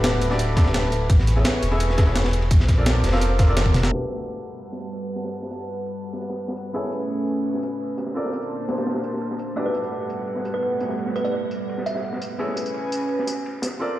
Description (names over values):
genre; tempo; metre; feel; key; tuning
liquid drum and bass; 170 BPM; 4/4; straight; G major; A4 = 440 Hz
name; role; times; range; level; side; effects
felt-muted upright piano; accompaniment; 0.0-14.0 s; A3 to F5; -28 LUFS; equal; vintage 12-bit sampler grit, dub echo
warm analog pad; sustained chords; 0.0-13.8 s; G3 to D6; -29 LUFS; right 1 dB; chorus, sidechain pumping
saturated sub bass; bass; 0.0-3.9 s; D1 to Bb1; -21 LUFS; equal; none
breakbeat sampler-style drum kit; drums; 0.0-13.7 s; hi-hat, snare drum, tambourine, toms; -27 LUFS; equal; small room ambience
crunchy breakbeat drum kit; drums; 0.0-13.7 s; ride cymbal, snare drum; -31 LUFS; equal; high-pass filter on cymbals, low-pass filter on cymbals, small room ambience, high-pass filter on snare, low-pass filter on snare, high-pass filter on room, low-pass filter on room
electronic kick drum; drums; 0.6-3.7 s; none; -17 LUFS; equal; overdrive, small room ambience
kalimba; melody; 9.6-12.2 s; B4 to E5; -28 LUFS; right 1 dB; dub echo
room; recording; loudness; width
light reverb, small room ambience; played on a big sound system in a bare room, stone room reverb, low-pass filter; -21 LUFS; side -15 dB against mid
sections
0.0-3.9 A section; 3.9-14.0 B section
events
drum fill 3.6-3.9; band accent 3.8; filter sweep 3.9-14.0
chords
0.0 Gmaj9; 1.1 Amaj9; 2.5 Bbmaj9; 3.9 Gmaj9; 6.7 Amaj9; 8.2 Bbmaj9; 9.6 Gmaj9; 12.4 Amaj9